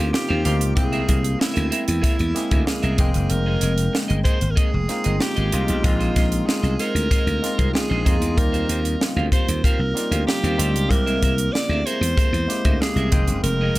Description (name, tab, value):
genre	polished 1980s jazz-funk pop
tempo	95 BPM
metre	4/4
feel	straight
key	Eb major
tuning	A4 = 440 Hz
part	bright alto saxophone	melody	0.0-13.8 s	E4 to D5	-26 LUFS	right 2 dB	none
part	barky tine electric piano	accompaniment	0.0-13.8 s	G3 to G5	-26 LUFS	left 1 dB	overdrive, lush chorus
part	electric guitar at the edge of break-up	riff	0.0-13.7 s	G4 to F5	-29 LUFS	right 3 dB	lush chorus
part	slap bass	bass	0.0-13.8 s	F1 to F2	-22 LUFS	equal	none
part	crisp fusion drum kit	drums	0.1-13.8 s	hi-hat, kick drum, snare drum	-22 LUFS	equal	none
room	light reverb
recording	none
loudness	-18 LUFS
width	side -18 dB against mid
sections	0.0-13.8 A section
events	none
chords	0.0 Eb69; 0.8 C7b13; 3.0 Fm11; 5.8 Bb9sus4; 8.4 Eb69; 10.9 C7b13; 13.1 Fm11